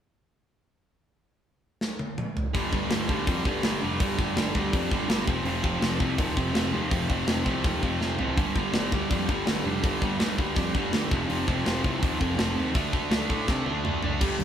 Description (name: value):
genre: punk rock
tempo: 165 BPM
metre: 4/4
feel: straight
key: unclear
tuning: A4 = 440 Hz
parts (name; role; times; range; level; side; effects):
- tight metal drum kit; drums; 1.8-14.4 s; crash cymbal, hi-hat, kick drum, snare drum, toms; -28 LUFS; equal; none
- distorted electric guitar; riff; 2.5-14.4 s; F2 to D4; -27 LUFS; right 1 dB; distortion
- fuzz picked electric bass; bass; 2.5-14.4 s; F1 to C3; -32 LUFS; equal; overdrive
room: light reverb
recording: band playing live in one room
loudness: -24 LUFS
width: side -9 dB against mid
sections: 1.1-2.5 A section; 2.5-14.2 B section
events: drum fill 1.8-2.5, 8.0-8.4, 13.5-14.2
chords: 1.1 N.C.; 2.5 G5; 5.3 F5; 8.4 G5; 11.1 F5; 12.7 D5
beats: | 1.08 1.45 1.81 2.17 | 2.54 2.90 3.27 3.63 | 4.00 4.36 4.73 5.09 | 5.46 5.82 6.18 6.55 | 6.91 7.28 7.64 8.01 | 8.37 8.73 9.10 9.46 | 9.83 10.19 10.56 10.92 | 11.29 11.65 12.02 12.38 | 12.75 13.11 13.48 13.84 | 14.21